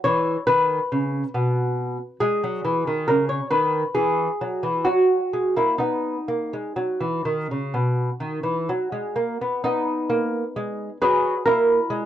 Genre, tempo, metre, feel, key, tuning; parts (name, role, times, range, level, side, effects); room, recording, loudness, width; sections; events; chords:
classical, baroque-style dance for lute; 61-70 BPM; 4/4; rubato; B major; A4 = 440 Hz
lute; solo; 0.0-12.1 s; B2 to C#5; -20 LUFS; equal
light reverb; dry, close 1970s-style studio recording; -20 LUFS; side -11 dB against mid
0.0-9.7 A section; 9.7-12.1 B section
0.5 B; 2.2 G#5; 4.0 E; 4.9 F#; 5.8 B; 11.5 F#9 (rootless)